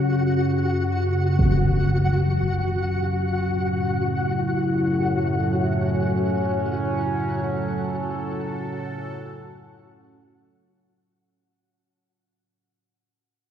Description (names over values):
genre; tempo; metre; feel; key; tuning
dark ambient drone; free time; none; none; F# minor; A4 = 440 Hz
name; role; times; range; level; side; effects
analog drone; drone; 0.0-11.3 s; F#2 to C#3; -24 LUFS; left 1 dB; chorus
flickering grainy texture; texture; 0.0-11.2 s; F#4 to F#5; -28 LUFS; left 2 dB; built-in reverb, shimmer reverb
impact; percussion; 1.4-1.6 s; none; -27 LUFS; right 1 dB; low-pass filter on sfx
sweeping resonant pad; sustained chords; 3.9-11.2 s; A2 to A4; -26 LUFS; right 1 dB; chorus, phaser, shimmer reverb
room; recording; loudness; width
wet cathedral reverb, RT60 6.8 s; in a vast, echoing space; -21 LUFS; side -9 dB against mid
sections
0.0-11.2 A section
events
fade-out 6.0-11.2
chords
0.0 F#m